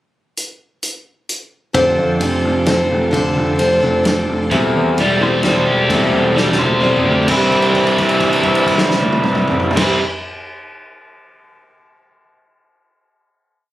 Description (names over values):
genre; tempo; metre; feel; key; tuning
folk rock and heartland rock; 130 BPM; 3/4; straight; C major; A4 = 437 Hz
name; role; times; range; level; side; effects
natural country drum kit; drums; 0.4-9.9 s; crash cymbal, hi-hat, kick drum, ride cymbal, snare drum, toms; -22 LUFS; equal; none
picked plugged-in steel-string acoustic guitar; accompaniment; 1.7-10.0 s; C3 to C5; -18 LUFS; left 1 dB; none
picked electric bass; bass; 1.7-10.0 s; E1 to F2; -19 LUFS; right 1 dB; none
tonewheel organ; sustained chords; 1.8-10.0 s; C4 to C6; -28 LUFS; equal; none
overdriven electric guitar; riff; 4.5-10.0 s; E2 to C5; -15 LUFS; equal; none
room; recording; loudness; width
light reverb, small room ambience; recorded on a phone in the room, studio ambience; -13 LUFS; side -14 dB against mid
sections
0.4-1.8 pickup bar; 1.8-7.3 verse; 7.3-10.0 final chord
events
drum fill 6.4-7.3; held note 7.3-9.8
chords
0.4 N.C.; 1.8 F6; 4.5 C6/E; 7.3 Cmaj9